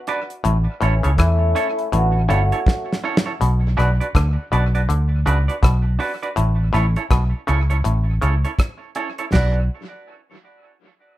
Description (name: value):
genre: roots reggae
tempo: 81 BPM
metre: 4/4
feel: swing 61% on 16ths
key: B minor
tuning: A4 = 440 Hz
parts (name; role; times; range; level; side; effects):
- muted trombone section; second line; 0.0-3.0 s; E3 to F#4; -24 LUFS; left 1 dB; tape echo
- semi-hollow electric guitar; accompaniment; 0.1-9.6 s; C#4 to D5; -26 LUFS; right 4 dB; tape echo
- damped 70s drum kit; drums; 0.1-9.5 s; crash cymbal, hi-hat, kick drum, rim click, snare drum, toms; -19 LUFS; equal; none
- muted clav; riff; 0.4-8.4 s; G2 to E3; -25 LUFS; left 4 dB; none
- vintage muted fingered electric bass; bass; 0.5-9.7 s; G1 to E2; -17 LUFS; equal; none
room: light reverb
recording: rough home demo mix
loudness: -17 LUFS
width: side -15 dB against mid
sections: 0.0-3.4 A section; 3.4-9.3 B section; 9.3-11.2 C section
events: drum fill 2.7-3.4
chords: 0.4 A; 3.4 Bm; 6.4 A; 9.3 Bm